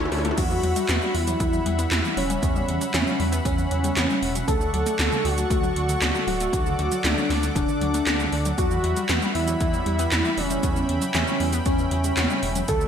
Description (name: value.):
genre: synthwave.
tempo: 117 BPM.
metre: 4/4.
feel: straight.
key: E dorian.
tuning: A4 = 438 Hz.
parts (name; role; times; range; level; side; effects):
warm analog pad; sustained chords; 0.0-12.9 s; G3 to D6; -32 LUFS; equal; chorus, sidechain pumping.
analog pluck; arpeggios; 0.0-12.9 s; C#3 to D4; -31 LUFS; left 2 dB; chorus, cassette tape, ping-pong delay.
dark detuned saw bass; bass; 0.0-12.9 s; D1 to E2; -27 LUFS; equal; sidechain pumping.
80s electronic pad drums; drums; 0.1-12.9 s; crash cymbal, handclaps, hi-hat, shaker, snare drum, toms; -27 LUFS; right 1 dB; gated reverb on snare and toms, overdrive, gated reverb.
wide unison lead; melody; 0.4-12.9 s; C#4 to A4; -26 LUFS; equal; digital delay.
FM electric piano with soft pad layer; second line; 0.4-12.9 s; C#4 to A4; -33 LUFS; left 1 dB; none.
electronic kick drum; drums; 0.4-12.8 s; none; -26 LUFS; equal; overdrive.
room: moderate lush hall reverb, RT60 2.1 s.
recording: bright 1980s-style digital production.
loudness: -20 LUFS.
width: side -8 dB against mid.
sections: 0.4-12.9 A section.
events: drum fill 0.0-0.4.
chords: 0.4 Emadd9; 4.5 Dmaj7; 8.6 Emadd9.